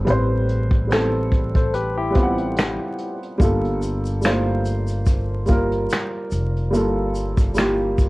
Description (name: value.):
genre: lo-fi hip hop.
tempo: 72 BPM.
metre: 4/4.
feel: swing 56% on 16ths.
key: G dorian.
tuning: A4 = 440 Hz.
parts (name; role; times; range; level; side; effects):
warm upright piano; accompaniment; 0.0-8.1 s; G3 to F#5; -22 LUFS; equal; none.
upright bass; bass; 0.0-8.1 s; F1 to A1; -23 LUFS; equal; none.
vintage brush drum kit; drums; 0.1-8.1 s; finger snaps, hi-hat, kick drum, snare drum; -20 LUFS; equal; cassette tape.
barky tine electric piano; second line; 1.6-3.2 s; E4 to C5; -26 LUFS; left 3 dB; medium stereo tremolo, analog delay.
tube shaker; percussion; 3.4-8.1 s; none; -44 LUFS; left 4 dB; none.
room: light reverb.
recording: home recording on cassette, vinyl crackle.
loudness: -18 LUFS.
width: side -21 dB against mid.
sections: 0.0-8.1 A section.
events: none.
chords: 0.0 Am9; 3.4 Gm9.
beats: | 0.06 0.90 1.73 2.56 | 3.40 4.23 5.06 5.90 | 6.73 7.56.